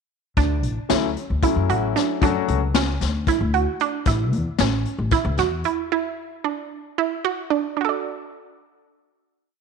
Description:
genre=progressive instrumental, band music in an uneven meter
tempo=227 BPM (eighths)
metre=7/8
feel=straight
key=D major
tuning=A4 = 441 Hz
part: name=analog pluck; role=arpeggios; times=0.4-9.6 s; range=C#4 to D5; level=-24 LUFS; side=right 11 dB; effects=chorus
part: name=upright bass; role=bass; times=0.4-5.6 s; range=A1 to F#2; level=-23 LUFS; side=left 1 dB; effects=none
part: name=vintage brush drum kit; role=drums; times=0.4-5.8 s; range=hi-hat, kick drum, snare drum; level=-24 LUFS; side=left 5 dB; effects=none
part: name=warm grand piano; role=accompaniment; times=0.9-2.6 s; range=F#3 to F#4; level=-24 LUFS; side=left 16 dB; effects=none
room=light reverb, small room ambience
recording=1960s-style stereo with parts hard left and right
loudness=-20 LUFS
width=side -5 dB against mid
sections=0.4-7.8 groove; 7.8-9.6 final chord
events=none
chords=0.4 Dmaj7; 4.1 A; 5.9 Dadd9; 7.8 D

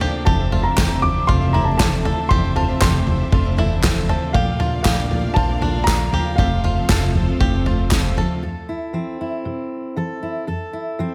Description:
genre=indie folk with a building arrangement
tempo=118 BPM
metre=4/4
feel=straight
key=F major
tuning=A4 = 442 Hz
part: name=felt-muted upright piano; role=accompaniment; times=0.0-8.4 s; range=F1 to A5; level=-34 LUFS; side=equal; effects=none
part: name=picked steel-string acoustic guitar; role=accompaniment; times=0.0-8.4 s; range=F2 to A4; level=-29 LUFS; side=equal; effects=none
part: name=rich symphonic string section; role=sustained chords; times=0.0-8.4 s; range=Bb3 to F5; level=-35 LUFS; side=equal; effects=none
part: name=bluegrass banjo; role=arpeggios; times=0.0-8.4 s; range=D4 to A4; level=-31 LUFS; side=equal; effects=none
part: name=upright bass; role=bass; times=0.0-8.2 s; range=F1 to Bb1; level=-24 LUFS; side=equal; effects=none
part: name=unplugged drum kit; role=drums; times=0.0-8.3 s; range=kick drum, snare drum, toms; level=-22 LUFS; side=equal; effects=none
part: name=dark upright piano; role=melody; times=0.2-7.9 s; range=F5 to D6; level=-26 LUFS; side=equal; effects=tape echo
part: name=group handclap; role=percussion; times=0.8-8.0 s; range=none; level=-30 LUFS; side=equal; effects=none
part: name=tambourine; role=percussion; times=0.8-8.0 s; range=none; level=-37 LUFS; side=equal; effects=none
part: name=fingerpicked steel-string acoustic guitar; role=accompaniment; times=8.4-11.1 s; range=F2 to A4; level=-27 LUFS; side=equal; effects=none
room=light reverb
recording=none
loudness=-19 LUFS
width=mono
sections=0.0-8.4 A section; 8.4-11.1 B section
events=felt piano fill 3.3-4.3, 7.7-8.4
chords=0.3 Fmaj7; 4.3 Bbmaj7; 6.4 F; 8.4 Fmaj7

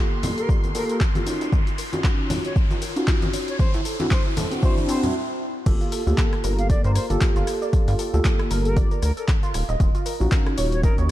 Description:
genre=deep house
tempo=116 BPM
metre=4/4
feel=swing 57% on 16ths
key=unclear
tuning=A4 = 440 Hz
part: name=warbly dusty pluck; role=arpeggios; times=0.0-11.0 s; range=E4 to Eb5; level=-32 LUFS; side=right 2 dB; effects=lush chorus, sidechain pumping, ping-pong delay
part: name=mellow tine electric piano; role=stabs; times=0.0-11.1 s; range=Bb3 to A4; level=-27 LUFS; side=equal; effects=phaser, sidechain pumping, low-pass filter, ping-pong delay
part: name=riser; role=sound effects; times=0.0-5.1 s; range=none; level=-35 LUFS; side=equal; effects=none
part: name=string machine, violins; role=texture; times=0.0-5.1 s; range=C6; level=-39 LUFS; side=equal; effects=ensemble chorus
part: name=rubbery square bass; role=bass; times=0.2-11.1 s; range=Eb1 to A2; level=-24 LUFS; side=equal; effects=sidechain pumping, high-pass filter
part: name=punchy analog drum machine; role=drums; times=0.2-11.1 s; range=cabasa, crash cymbal, handclaps, hi-hat, rim click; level=-32 LUFS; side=left 2 dB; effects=overdrive, studio reverb
part: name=congas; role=percussion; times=0.2-5.1 s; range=none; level=-31 LUFS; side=left 1 dB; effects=sidechain pumping on perc
part: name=breathy mellow silver concert flute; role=melody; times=0.4-11.0 s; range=Bb4 to F5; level=-33 LUFS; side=left 1 dB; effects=ping-pong delay
part: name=electronic kick drum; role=drums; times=0.5-11.0 s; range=none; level=-21 LUFS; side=equal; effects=overdrive, studio reverb
room=light reverb, digital ambience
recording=dark, warm production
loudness=-19 LUFS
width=side -14 dB against mid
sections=0.0-5.7 A section; 5.7-11.1 B section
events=build-up 0.0-5.7; riser 0.0-5.1; filter sweep on tine electric piano 0.0-5.7; filter sweep on synth pluck 0.0-5.7; stop 5.1-5.7; drop 5.7-11.1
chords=0.0 Gm9; 1.3 Ebm9; 3.6 Am; 5.7 Gm9; 9.5 Ebm9

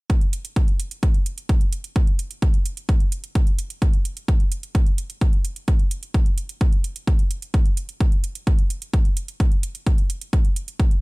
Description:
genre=EDM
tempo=129 BPM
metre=4/4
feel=straight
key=none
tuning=none
part: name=electronic hi-hat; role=drums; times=0.1-11.0 s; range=none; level=-34 LUFS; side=right 6 dB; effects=small room ambience
part: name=electronic kick drum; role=drums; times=0.1-10.9 s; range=none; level=-18 LUFS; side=equal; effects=small room ambience
room=little or no reverb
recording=none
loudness=-19 LUFS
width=side -27 dB against mid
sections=0.1-11.0 A section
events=none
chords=none

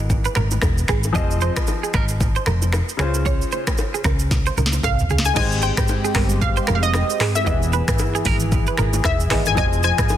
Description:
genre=afrobeats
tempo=114 BPM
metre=4/4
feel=swing 58% on 16ths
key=Ab major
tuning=A4 = 437 Hz
part: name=clear grand piano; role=accompaniment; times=0.0-10.2 s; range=Db3 to E5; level=-29 LUFS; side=left 4 dB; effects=none
part: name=hollow-body short-scale fingered electric bass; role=bass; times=0.0-9.9 s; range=E1 to Db2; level=-21 LUFS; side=equal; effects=none
part: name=afro-pop drum kit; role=drums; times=0.1-10.2 s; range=crash cymbal, finger snaps, handclaps, hi-hat, kick drum, rim click, shaker, snare drum, toms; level=-21 LUFS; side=equal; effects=soft clipping on snare
part: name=bongos and congas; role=percussion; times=0.1-10.2 s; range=none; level=-29 LUFS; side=left 1 dB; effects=none
part: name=semi-hollow electric guitar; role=riff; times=0.3-9.9 s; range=G#4 to Eb5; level=-27 LUFS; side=right 8 dB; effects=wide subtle chorus, digital delay
part: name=analog pluck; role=melody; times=4.8-10.2 s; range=Eb5 to Ab5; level=-23 LUFS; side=left 2 dB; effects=chorus, digital delay
part: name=warm analog pad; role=sustained chords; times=5.4-10.2 s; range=E3 to G#4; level=-28 LUFS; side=equal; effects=chorus
room=light reverb, digital ambience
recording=dense, heavily limited modern master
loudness=-17 LUFS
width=side -11 dB against mid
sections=0.0-5.4 A section; 5.4-10.2 B section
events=drum fill 4.3-5.4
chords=0.0 Emaj7; 1.2 Fm7; 3.0 Dbmaj7; 5.4 Abmaj7; 7.5 Emaj7; 9.6 Fm7

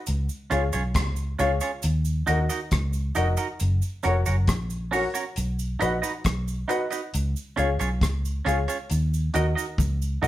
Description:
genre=roots reggae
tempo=68 BPM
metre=4/4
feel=straight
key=unclear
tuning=A4 = 440 Hz
part: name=vintage muted fingered electric bass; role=bass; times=0.1-10.3 s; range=E#1 to D#2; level=-25 LUFS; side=equal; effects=none
part: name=damped 70s drum kit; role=drums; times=0.1-10.3 s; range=hi-hat, kick drum, rim click, toms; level=-28 LUFS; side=equal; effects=none
part: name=cabasa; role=percussion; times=0.1-10.3 s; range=none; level=-40 LUFS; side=right 7 dB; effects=none
part: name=semi-hollow electric guitar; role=accompaniment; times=0.5-10.3 s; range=C#4 to D#5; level=-28 LUFS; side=right 4 dB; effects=none
part: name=dark upright piano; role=stabs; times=0.5-10.3 s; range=E#4 to F#5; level=-28 LUFS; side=left 2 dB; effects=none
room=moderate studio reverb, RT60 0.8 s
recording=band playing live in one room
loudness=-23 LUFS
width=side -14 dB against mid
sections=0.0-10.3 A section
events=drum fill 9.8-10.3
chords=0.1 C#; 1.8 D#m; 3.6 F#; 5.4 B; 7.1 C#; 8.9 D#m

